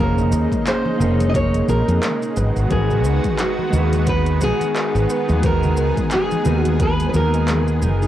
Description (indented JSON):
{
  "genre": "sunset chillout",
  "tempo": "88 BPM",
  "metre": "4/4",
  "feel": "swing 58% on 16ths",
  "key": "unclear",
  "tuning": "A4 = 440 Hz",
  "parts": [
    { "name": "nylon-string guitar", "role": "melody", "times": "0.0-7.8 s", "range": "Gb4 to Eb5", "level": "-23 LUFS", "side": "equal", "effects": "analog delay, plate reverb" },
    { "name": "mellow electric guitar", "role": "accompaniment", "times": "0.0-8.1 s", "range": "Ab3 to Db5", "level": "-24 LUFS", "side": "equal", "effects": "auto-pan, cassette tape, tape echo, plate reverb" },
    { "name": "lush unison pad", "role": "sustained chords", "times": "0.0-8.1 s", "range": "Db3 to Ab4", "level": "-25 LUFS", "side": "equal", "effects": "chorus, cassette tape, plate reverb" },
    { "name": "soft round pluck", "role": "arpeggios", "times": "0.0-8.1 s", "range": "Eb4 to Cb5", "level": "-31 LUFS", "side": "right 3 dB", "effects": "none" },
    { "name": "mellow fretless electric bass", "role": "bass", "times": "0.0-8.1 s", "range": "F1 to F2", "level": "-18 LUFS", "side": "equal", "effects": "none" },
    { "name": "deep house drum kit", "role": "drums", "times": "0.2-8.1 s", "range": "handclaps, hi-hat, shaker, toms", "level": "-27 LUFS", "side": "equal", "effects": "overdrive" },
    { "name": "congas", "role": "percussion", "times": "0.2-8.0 s", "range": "none", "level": "-27 LUFS", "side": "left 2 dB", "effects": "none" },
    { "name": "electronic kick drum", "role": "drums", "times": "0.5-7.0 s", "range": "none", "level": "-25 LUFS", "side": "equal", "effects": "overdrive" }
  ],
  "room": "light reverb",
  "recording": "home recording on cassette",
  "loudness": "-16 LUFS",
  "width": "side -12 dB against mid",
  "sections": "0.0-8.1 A section",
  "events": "none",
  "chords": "0.0 Bbm9; 2.4 Abm9",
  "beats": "0.66 1.35 2.03 | 2.71 3.39 4.07 4.75 | 5.44 6.12 6.80 7.48"
}